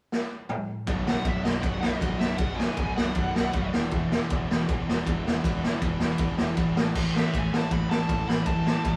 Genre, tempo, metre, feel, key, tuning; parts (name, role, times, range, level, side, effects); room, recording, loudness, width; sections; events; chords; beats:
punk rock; 158 BPM; 4/4; straight; A4 = 440 Hz
raw garage drum kit; drums; 0.1-8.9 s; crash cymbal, kick drum, ride cymbal, snare drum, toms; -29 LUFS; equal
distorted electric guitar; riff; 0.9-9.0 s; B1 to A3; -38 LUFS; equal
distorted electric guitar; riff; 0.9-9.0 s; B1 to A3; -40 LUFS; equal
overdriven semi-hollow guitar; riff; 0.9-9.0 s; B1 to A3; -34 LUFS; equal
fuzz picked electric bass; bass; 0.9-9.0 s; B0 to A1; -35 LUFS; equal; overdrive
smooth overdriven lead guitar; melody; 1.1-3.7, 7.2-9.0 s; D#5 to B5; -36 LUFS; equal
little or no reverb; band playing live in one room; -26 LUFS; mono
0.9-9.0 A section
drum fill 0.1-0.9
0.0 N.C.; 0.9 B5; 3.7 E5; 6.8 A5
0.13 0.51 | 0.89 1.27 1.65 2.03 | 2.41 2.79 3.17 3.55 | 3.93 4.31 4.69 5.07 | 5.45 5.82 6.20 6.58 | 6.96 7.34 7.72 8.10 | 8.48 8.85